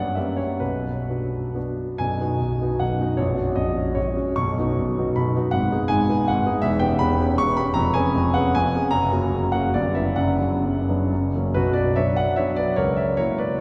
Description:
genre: classical, romantic triple-time dance for piano with dotted rhythms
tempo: 119-173 BPM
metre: 3/4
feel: rubato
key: B major, B minor from 6.6 s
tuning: A4 = 439 Hz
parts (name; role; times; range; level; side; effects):
- warm concert grand piano; solo; 0.0-13.6 s; A#0 to C#6; -22 LUFS; equal; none
room: wet cathedral reverb, RT60 4.2 s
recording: heard from further back in the room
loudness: -22 LUFS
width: mono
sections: 0.0-2.0 A section; 2.0-11.5 B section; 11.5-13.6 A section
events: none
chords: 0.2 F#7b9; 0.6 Bm; 2.0 B; 3.2 F#/A#; 4.4 B; 5.5 G#m7; 6.6 C#m7b5/E; 7.8 C#7/E#; 8.9 F#; 9.7 Em/G; 10.2 Bm/F#; 11.1 F#; 11.5 Bm; 12.8 F#7/C#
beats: 0.17 | 0.61 1.09 1.56 | 2.00 2.42 2.82 | 3.19 3.58 3.97 | 4.38 4.78 5.17 | 5.53 5.90 6.29 | 6.64 7.02 7.41 | 7.78 8.16 8.56 | 8.93 9.31 9.74 | 10.16 10.63 11.11 | 11.54 11.96 12.38 | 12.77 13.18

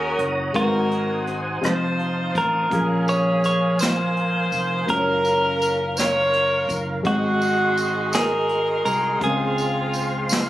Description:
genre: slow gospel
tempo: 55 BPM (dotted quarters)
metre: 6/8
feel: straight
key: unclear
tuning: A4 = 441 Hz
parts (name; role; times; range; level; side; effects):
- clean electric guitar; melody; 0.0-10.5 s; Gb4 to Db5; -24 LUFS; right 1 dB; none
- warm saxophone section; melody; 0.0-10.5 s; Ab3 to Db5; -23 LUFS; equal; none
- warm baby grand piano; accompaniment; 0.0-10.5 s; Ab2 to Db5; -28 LUFS; left 2 dB; none
- tonewheel organ; sustained chords; 0.0-10.5 s; Ab4 to Eb6; -29 LUFS; right 1 dB; slow rotary speaker, chorus vibrato
- fingered electric bass; bass; 0.0-10.5 s; F1 to Eb2; -27 LUFS; equal; none
- jazz brush drum kit; drums; 0.2-10.5 s; hi-hat, kick drum, rim click, snare drum; -28 LUFS; equal; none
- tambourine; percussion; 3.1-10.5 s; none; -32 LUFS; right 2 dB; none
room: light reverb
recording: recorded on a phone in the room, club reverb, compression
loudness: -19 LUFS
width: side -14 dB against mid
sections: 0.0-10.5 A section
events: none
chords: 0.0 Ebm7; 0.6 Ab7; 1.6 F7; 2.7 Bbm7; 4.9 Gbmaj7; 7.0 Ab7; 9.2 Dbmaj7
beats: | 0.55 1.63 | 2.71 3.80 | 4.88 5.96 | 7.05 8.13 | 9.22 10.30

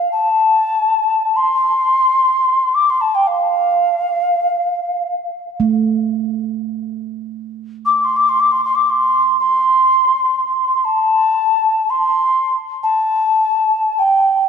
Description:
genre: world meditative, free-time meditation music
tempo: free time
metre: none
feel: none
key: unclear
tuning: A4 = 440 Hz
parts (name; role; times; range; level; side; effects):
- mellow alto ocarina; melody; 0.0-14.5 s; F5 to D6; -13 LUFS; equal; analog delay
- handpan; texture; 5.6-14.5 s; A3; -20 LUFS; right 8 dB; none
room: wet plate reverb, RT60 2.5 s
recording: dark, warm production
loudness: -13 LUFS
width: side -6 dB against mid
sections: 0.0-14.5 A section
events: none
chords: none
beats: free time

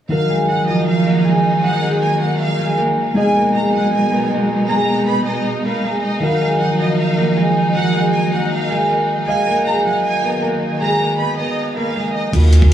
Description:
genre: hip hop, trap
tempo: 157 BPM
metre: 4/4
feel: half-time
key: Eb minor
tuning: A4 = 435 Hz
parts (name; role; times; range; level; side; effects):
- concert harp; melody; 0.1-12.7 s; F3 to Cb5; -18 LUFS; right 1 dB; dub echo
- dark studio violin section; second line; 0.1-12.3 s; Eb5 to Cb6; -23 LUFS; right 2 dB; dub echo
- mellow tine electric piano; accompaniment; 0.1-12.7 s; Eb3 to F5; -21 LUFS; left 2 dB; none
- warm symphonic string section; sustained chords; 0.1-12.7 s; Bb2 to F5; -23 LUFS; right 3 dB; none
- warm 808-style bass; bass; 12.3-12.7 s; Eb2; -10 LUFS; equal; none
- boom bap sampler-style drum kit; drums; 12.3-12.7 s; crash cymbal, hi-hat, kick drum; -14 LUFS; right 1 dB; none
room: moderate spring reverb, RT60 1.2 s, small room ambience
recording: echo-heavy mix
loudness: -14 LUFS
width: side -10 dB against mid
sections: 0.1-12.3 A section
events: none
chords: 0.1 Ebmadd9; 3.2 Abmadd9; 6.2 Ebmadd9; 9.3 Bbsus4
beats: | 0.10 0.49 0.87 1.25 | 1.63 2.02 2.40 2.78 | 3.16 3.54 3.93 4.31 | 4.69 5.07 5.46 5.84 | 6.22 6.60 6.98 7.37 | 7.75 8.13 8.51 8.89 | 9.28 9.66 10.04 10.42 | 10.80 11.19 11.57 11.95 | 12.33 12.72

